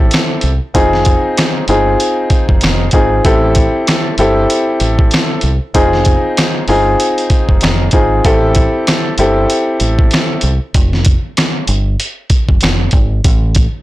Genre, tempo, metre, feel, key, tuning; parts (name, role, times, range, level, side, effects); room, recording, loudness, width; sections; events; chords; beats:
hip hop, boom-bap hip-hop; 96 BPM; 4/4; swing 56% on 16ths; A4 = 440 Hz
clear upright piano; accompaniment; 0.0-10.5 s; C4 to A4; -13 LUFS; left 1 dB; cassette tape, high-pass filter, low-pass filter, plate reverb
deep dub fingered electric bass; bass; 0.0-13.7 s; F1 to C2; -15 LUFS; equal; transformer saturation
dusty soul sampler-style drum kit; drums; 0.1-13.7 s; hi-hat, kick drum, rim click, snare drum; -13 LUFS; equal
light reverb; blown-out, overdriven recording, overdrive; -10 LUFS; side -16 dB against mid
0.0-13.8 A section
0.0 Am7; 0.7 Fm7; 3.2 Am7; 5.7 Fm7; 8.2 Am7; 10.7 Fm; 13.2 N.C.
0.12 | 0.75 1.37 2.00 2.62 | 3.25 3.87 4.50 5.12 | 5.75 6.37 7.00 7.62 | 8.25 8.87 9.50 10.12 | 10.75 11.37 12.00 12.62 | 13.25